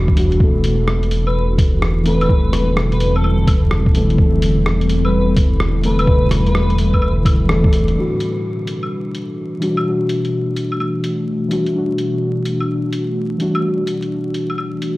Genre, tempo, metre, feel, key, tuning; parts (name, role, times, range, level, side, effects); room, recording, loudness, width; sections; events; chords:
future garage; 127 BPM; 4/4; swing 65% on 16ths; E minor; A4 = 440 Hz
muted felt-like synth keys; accompaniment; 0.0-15.0 s; E3 to A4; -20 LUFS; left 1 dB; chorus, sidechain pumping, low-pass filter, analog delay
ethereal airy pad; sustained chords; 0.0-15.0 s; A2 to F#4; -23 LUFS; equal; ensemble chorus, built-in reverb, phaser, sidechain pumping
dark detuned saw bass; bass; 0.0-7.9 s; E1; -17 LUFS; equal; sidechain pumping
electronic kick drum; drums; 0.1-7.7 s; -14 LUFS; equal
lo-fi sampler-style drum kit; drums; 0.2-14.9 s; claves, hi-hat, rim click; -26 LUFS; equal
airy dreamy lead; melody; 1.3-7.1 s; A4 to B4; -26 LUFS; equal; chorus, cassette tape, analog delay
light reverb; played on a big sound system in a bare room, large studio reverb, vinyl crackle; -14 LUFS; side -19 dB against mid
0.0-8.0 A section; 8.0-15.0 B section
band accent 7.5; filter sweep on ambient pad 8.0-15.0; filter sweep on synth keys 8.0-15.0
0.4 Am/E; 8.0 Em9